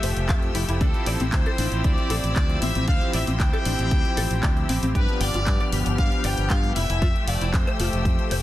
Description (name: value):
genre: nu-disco, nu disco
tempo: 116 BPM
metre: 4/4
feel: straight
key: D dorian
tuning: A4 = 440 Hz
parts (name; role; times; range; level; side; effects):
- brilliant trumpet section; melody; 0.0-8.3 s; A4 to G5; -31 LUFS; left 2 dB; vintage 12-bit sampler grit, tape echo
- warm analog pad; accompaniment; 0.0-8.4 s; F3 to G4; -29 LUFS; equal; chorus, sidechain pumping
- clear studio string section; sustained chords; 0.0-8.4 s; A4 to F6; -34 LUFS; left 2 dB; sidechain pumping
- clean electric guitar; riff; 0.0-8.4 s; C4 to G5; -31 LUFS; left 2 dB; ensemble chorus
- fingered electric bass with an envelope filter; bass; 0.0-8.4 s; F1 to G2; -26 LUFS; equal; none
- pop drum kit; drums; 0.0-8.4 s; handclaps, hi-hat; -31 LUFS; left 1 dB; studio ambience
- electronic kick drum; drums; 0.3-8.2 s; none; -23 LUFS; equal; studio ambience
room: digital ambience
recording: dense, heavily limited modern master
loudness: -20 LUFS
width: side -14 dB against mid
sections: 0.0-8.4 A section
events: none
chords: 0.0 Fmaj9; 0.8 Dm11; 5.0 G7; 6.8 Fmaj9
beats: 0.29 | 0.81 1.33 1.85 2.36 | 2.88 3.40 3.92 4.43 | 4.95 5.47 5.98 6.50 | 7.02 7.54 8.05